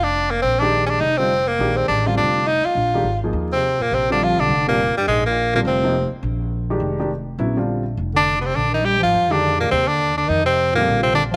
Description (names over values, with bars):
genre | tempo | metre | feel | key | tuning
modal jazz | 207 BPM | 4/4 | swing 61% on 8ths | unclear | A4 = 440 Hz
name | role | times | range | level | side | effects
edgy tenor saxophone | melody | 0.0-6.1, 8.2-11.4 s | G3 to G4 | -20 LUFS | equal | none
upright bass | bass | 0.0-11.4 s | F1 to F2 | -27 LUFS | equal | none
warm upright piano | accompaniment | 0.6-11.2 s | C3 to Ab4 | -26 LUFS | equal | none
mellow bass clarinet | second line | 3.5-6.1, 8.1-11.4 s | G2 to G3 | -28 LUFS | equal | none
room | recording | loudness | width
light reverb, studio reverb | none | -19 LUFS | mono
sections
0.0-11.4 A section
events
none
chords
0.0 Ebsus2; 3.9 Bbadd9; 8.6 Ebsus2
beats
0.15 | 0.44 0.73 1.02 1.31 | 1.60 1.89 2.18 2.46 | 2.75 3.04 3.33 3.62 | 3.92 4.20 4.49 4.78 | 5.07 5.36 5.65 5.94 | 6.23 6.52 6.81 7.10 | 7.39 7.68 7.97 8.26 | 8.55 8.84 9.13 9.42 | 9.71 10.01 10.30 10.59 | 10.88 11.17